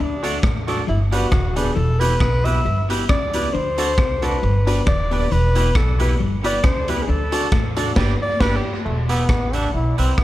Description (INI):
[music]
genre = ska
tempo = 136 BPM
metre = 4/4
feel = swing 56% on 8ths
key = E minor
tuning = A4 = 435 Hz
[part]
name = breathy alto saxophone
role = melody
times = 0.0-8.8 s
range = D4 to E5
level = -24 LUFS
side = equal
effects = tape echo
[part]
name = clean electric guitar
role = riff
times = 0.0-7.7 s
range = D#3 to D4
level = -30 LUFS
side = left 7 dB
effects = ensemble chorus, tape echo
[part]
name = upright bass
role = bass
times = 0.0-10.2 s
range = D#1 to D2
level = -21 LUFS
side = equal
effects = none
[part]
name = twangy electric guitar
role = accompaniment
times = 0.2-10.2 s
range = D4 to E5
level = -28 LUFS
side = right 6 dB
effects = lush chorus
[part]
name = clear upright piano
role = stabs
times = 0.2-8.6 s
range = A3 to B4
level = -27 LUFS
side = left 3 dB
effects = none
[part]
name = raw garage drum kit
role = drums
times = 0.2-10.2 s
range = crash cymbal, hi-hat, kick drum, rim click, snare drum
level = -22 LUFS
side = equal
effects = none
[part]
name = warm trombone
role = melody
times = 8.9-10.2 s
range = A3 to E4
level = -24 LUFS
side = equal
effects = tape echo
[sound]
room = light reverb, small room ambience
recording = none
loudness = -17 LUFS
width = side -15 dB against mid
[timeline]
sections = 0.0-8.8 A section; 8.8-10.2 B section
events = alto saxophone solo 0.0-8.8; band accent 8.0-8.8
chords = 0.0 D; 0.9 G; 1.8 Em; 3.5 D; 4.4 G; 5.3 Em; 7.1 D; 8.0 G; 8.8 Em